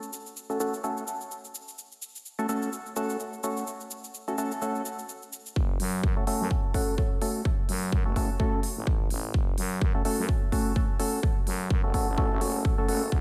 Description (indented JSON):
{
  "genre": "bass house",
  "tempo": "127 BPM",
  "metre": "4/4",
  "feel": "swing 56% on 16ths",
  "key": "F# minor",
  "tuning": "A4 = 440 Hz",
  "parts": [
    { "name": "electronic shaker and hi-hat", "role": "drums", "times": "0.0-13.0 s", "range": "none", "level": "-40 LUFS", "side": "equal", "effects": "overdrive, studio reverb" },
    { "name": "percussive organ stab", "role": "stabs", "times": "0.5-13.0 s", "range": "A3 to A4", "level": "-33 LUFS", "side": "equal", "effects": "chorus, phaser, sidechain pumping, analog delay" },
    { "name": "growling FM bass", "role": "bass", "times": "5.6-13.2 s", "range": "F#1 to F#2", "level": "-35 LUFS", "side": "equal", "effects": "overdrive, sidechain pumping, high-pass filter" },
    { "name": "electronic kick drum", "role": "drums", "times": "5.6-13.2 s", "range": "none", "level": "-28 LUFS", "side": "equal", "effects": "studio reverb" }
  ],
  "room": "moderate lush hall reverb, RT60 1.8 s",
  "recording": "dreamy mix soaked in reverb",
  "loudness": "-28 LUFS",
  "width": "mono",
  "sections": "0.0-5.6 A section; 5.6-13.2 B section",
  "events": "filter sweep on synth stab 0.0-5.6; build-up 5.6-13.2",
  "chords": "0.0 F#m",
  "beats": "0.37 0.84 1.31 | 1.78 2.26 2.73 3.20 | 3.67 4.14 4.62 5.09 | 5.56 6.04 6.51 6.98 | 7.45 7.92 8.40 8.87 | 9.34 9.81 10.29 10.76 | 11.23 11.70 12.18 12.65 | 13.12"
}